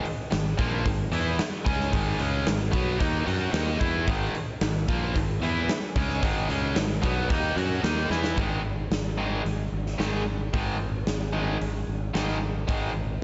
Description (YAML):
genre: hard rock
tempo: 112 BPM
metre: 4/4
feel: straight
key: G# minor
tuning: A4 = 440 Hz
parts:
  - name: tight distorted guitar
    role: riff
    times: 0.0-12.9 s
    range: G#2 to F#4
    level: -31 LUFS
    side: equal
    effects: distortion
  - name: modern bright fingered electric bass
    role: bass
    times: 0.0-13.2 s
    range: G#1 to F#2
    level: -32 LUFS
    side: equal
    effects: none
  - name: huge arena drum kit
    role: drums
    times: 0.1-12.8 s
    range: hi-hat, kick drum, snare drum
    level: -32 LUFS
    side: equal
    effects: none
room: moderate lush hall reverb, RT60 2.3 s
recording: big arena sound, nothing above 7.8 kHz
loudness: -27 LUFS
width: mono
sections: 0.0-8.4 A section; 8.4-13.2 B section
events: drum fill 8.1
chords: 0.0 G#m; 8.4 G#5